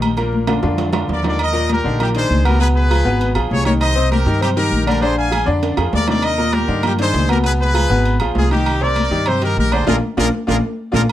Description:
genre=latin, salsa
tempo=198 BPM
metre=4/4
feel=straight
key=Eb major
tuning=A4 = 440 Hz
part: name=bright grand piano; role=accompaniment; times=0.0-11.0 s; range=Bb2 to D5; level=-20 LUFS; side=left 2 dB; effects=none
part: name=upright bass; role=bass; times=0.0-11.0 s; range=Ab1 to G2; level=-19 LUFS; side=equal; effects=none
part: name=agogo bells and timbales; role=percussion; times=0.0-11.1 s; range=none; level=-24 LUFS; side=right 7 dB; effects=none
part: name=congas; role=percussion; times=0.0-11.1 s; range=none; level=-24 LUFS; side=left 3 dB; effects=none
part: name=brilliant horn section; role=melody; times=1.1-11.0 s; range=Eb4 to Ab5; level=-20 LUFS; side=left 1 dB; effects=none
room=little or no reverb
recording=dry, close 1970s-style studio recording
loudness=-14 LUFS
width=side -12 dB against mid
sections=0.0-1.4 A section; 1.4-11.1 B section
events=drum fill 0.2-1.4, 5.6-6.2, 9.9-11.1; band accent 9.9-11.1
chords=0.2 Bb; 1.4 Ebmaj7; 2.6 Db9; 3.8 Cm7; 5.0 Bb9; 6.2 Ebmaj7; 7.4 Db9; 8.7 Cm7; 9.9 Bb

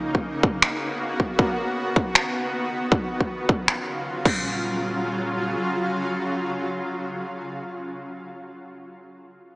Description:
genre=future bass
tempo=157 BPM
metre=4/4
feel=half-time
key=Eb minor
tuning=A4 = 440 Hz
part: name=shimmering ambient pad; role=sustained chords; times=0.0-7.3 s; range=Db3 to Gb4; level=-27 LUFS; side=equal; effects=chorus, built-in reverb, sidechain pumping
part: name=electronic kick drum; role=drums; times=0.1-4.3 s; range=none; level=-21 LUFS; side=equal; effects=overdrive
part: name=dubstep drum kit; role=drums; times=0.6-4.3 s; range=crash cymbal, finger snaps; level=-22 LUFS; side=equal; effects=overdrive
part: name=saturated sub bass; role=bass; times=4.3-5.6 s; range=Eb1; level=-30 LUFS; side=equal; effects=sidechain pumping
room=moderate lush hall reverb, RT60 1.8 s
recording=small speaker sound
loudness=-22 LUFS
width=side -24 dB against mid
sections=0.0-4.4 A section; 4.4-7.5 B section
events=none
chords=0.0 Gbadd11/Db; 1.4 B/D#; 2.9 Dbadd11; 4.3 Ebm9

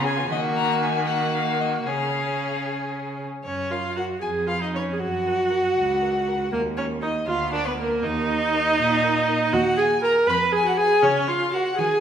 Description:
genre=quick classical-period movement for string quartet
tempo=79 BPM (dotted quarters)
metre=6/8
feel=rubato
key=F# major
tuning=A4 = 441 Hz
part: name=rich violin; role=melody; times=0.0-11.7 s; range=A#4 to A#5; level=-32 LUFS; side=left 6 dB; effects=none
part: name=clear violin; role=second line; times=0.0-12.0 s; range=E#4 to Cb6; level=-26 LUFS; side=left 4 dB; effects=none
part: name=clear viola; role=accompaniment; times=0.0-12.0 s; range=A#3 to Cb5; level=-23 LUFS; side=right 2 dB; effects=none
part: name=rich cello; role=bass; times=0.0-12.0 s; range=C#2 to D#3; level=-29 LUFS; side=right 4 dB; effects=none
room=wet recital hall reverb, RT60 1.4 s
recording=minimal, uncompressed stereo recording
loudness=-20 LUFS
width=side -8 dB against mid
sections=0.0-3.5 A section; 3.5-12.0 B section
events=none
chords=0.3 D#m; 1.9 C#; 3.5 F#; 4.2 C#9/E#; 5.0 F#; 6.5 D#5; 7.3 A#/D; 8.0 D#5; 9.5 B/D#; 10.3 Fdim; 11.0 A#m/C#

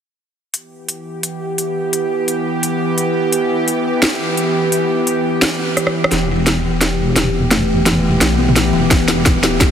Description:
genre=half-time drum and bass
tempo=172 BPM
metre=4/4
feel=swing 57% on 16ths, half-time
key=E minor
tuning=A4 = 439 Hz
part: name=bowed-like drone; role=sustained chords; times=0.9-9.7 s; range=E3 to G4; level=-18 LUFS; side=right 1 dB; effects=built-in reverb, sidechain pumping
part: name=drum and bass drum kit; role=drums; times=0.5-9.7 s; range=hi-hat, rim click, snare drum, tambourine, toms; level=-17 LUFS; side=equal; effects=small room ambience
part: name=buzzing kalimba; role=arpeggios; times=6.1-9.1 s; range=E3 to B3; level=-18 LUFS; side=left 4 dB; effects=tape echo
part: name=deep soft wobble bass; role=bass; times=6.1-9.7 s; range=E1 to B1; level=-19 LUFS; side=equal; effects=chorus
part: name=electronic kick drum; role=drums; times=8.9-9.7 s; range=none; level=-15 LUFS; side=equal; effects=small room ambience
room=moderate huge ambient reverb, RT60 4.5 s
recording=heavily compressed radio sound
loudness=-14 LUFS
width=side -8 dB against mid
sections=0.5-6.1 A section; 6.1-9.7 B section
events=drum fill 5.8-6.1, 6.1-9.7; build-up 6.1-9.7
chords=0.5 Em

